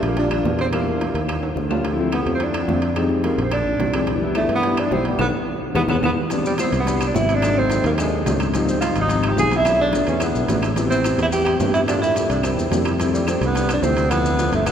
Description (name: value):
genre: Afro-Cuban jazz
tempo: 215 BPM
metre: 4/4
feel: straight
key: C major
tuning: A4 = 438 Hz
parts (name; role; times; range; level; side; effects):
- mellow tenor saxophone; melody; 0.0-14.7 s; G3 to Ab4; -22 LUFS; right 2 dB; none
- warm concert grand piano; accompaniment; 0.0-14.7 s; E3 to G4; -23 LUFS; left 3 dB; none
- sustaining fretless electric bass; bass; 0.0-14.7 s; G1 to G2; -23 LUFS; equal; none
- bongos; percussion; 0.0-14.7 s; none; -30 LUFS; left 3 dB; none
- timbales; percussion; 0.0-14.7 s; none; -28 LUFS; right 3 dB; none
- claves; percussion; 0.3-14.7 s; none; -36 LUFS; left 3 dB; none
- maracas; percussion; 6.3-14.7 s; none; -35 LUFS; left 4 dB; none
room: wet cathedral reverb, RT60 4.6 s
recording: recorded in a church or concert hall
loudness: -17 LUFS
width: side -8 dB against mid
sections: 0.0-6.3 A section; 6.3-14.7 B section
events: drum fill 1.4-1.8; band accent 5.2-6.3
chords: 0.0 Ebmaj9 (rootless); 0.7 Em7b5; 1.3 Eb9; 1.8 Dm7; 3.0 Fm7; 3.5 Bb9; 4.1 Cmaj9; 5.2 Bm7; 5.8 E; 6.3 Cmaj9; 7.4 Ab7b9; 8.5 Dbmaj9#11; 9.7 Bm7; 10.2 E7; 10.8 Am9; 11.9 Gm9; 12.4 C9; 13.0 Fmaj9; 14.1 Dm9